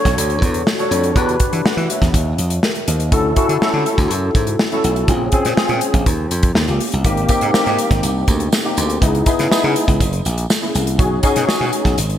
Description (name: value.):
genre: polished 1980s jazz-funk pop.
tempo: 122 BPM.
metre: 4/4.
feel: straight.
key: unclear.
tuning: A4 = 440 Hz.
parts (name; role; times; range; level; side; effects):
tine electric piano; accompaniment; 0.0-12.0 s; A#3 to F#5; -18 LUFS; left 1 dB; medium stereo tremolo, ensemble chorus.
slap bass; bass; 0.1-12.2 s; F#1 to E3; -19 LUFS; equal; none.
modern studio drum kit; drums; 0.1-12.2 s; hi-hat, kick drum, snare drum; -18 LUFS; equal; gated reverb.
tambourine; percussion; 7.0-12.1 s; none; -29 LUFS; right 7 dB; none.
room: moderate lush hall reverb, RT60 2.1 s.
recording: bright 1980s-style digital production.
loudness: -14 LUFS.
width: side -10 dB against mid.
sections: 0.0-12.2 A section.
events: none.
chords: 0.0 Bm7 (rootless); 1.2 Em7; 2.1 D#sus2; 3.1 Dmaj9; 5.1 A#m7; 6.1 D#7; 7.1 G#maj7; 9.0 C#m7; 10.0 F#7; 11.0 B6.